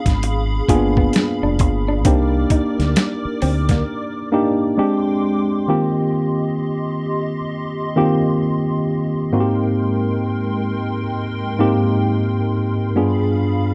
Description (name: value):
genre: R&B, neo-soul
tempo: 66 BPM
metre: 4/4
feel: swing 62% on 16ths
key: Eb major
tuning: A4 = 441 Hz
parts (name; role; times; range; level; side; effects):
- tine electric piano; accompaniment; 0.0-13.7 s; G2 to Ab4; -20 LUFS; equal; none
- hollow soft pad; sustained chords; 0.0-13.7 s; G3 to D6; -30 LUFS; equal; ensemble chorus
- deep dub fingered electric bass; bass; 0.1-3.8 s; F1 to D2; -22 LUFS; equal; none
- boom bap sampler-style drum kit; drums; 0.1-3.9 s; hi-hat, kick drum, snare drum; -20 LUFS; equal; none
- electric guitar through a small old amp; second line; 0.2-3.8 s; Bb3 to F4; -29 LUFS; equal; spring reverb
room: little or no reverb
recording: dry, close 1970s-style studio recording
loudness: -19 LUFS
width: mono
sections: 0.0-5.7 A section; 5.7-13.7 A section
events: drums muted 3.9-5.7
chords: 0.0 G7b9; 2.1 Cm9; 4.8 Abmaj7#11; 5.7 Eb6; 9.3 Abmaj9; 13.0 G7b9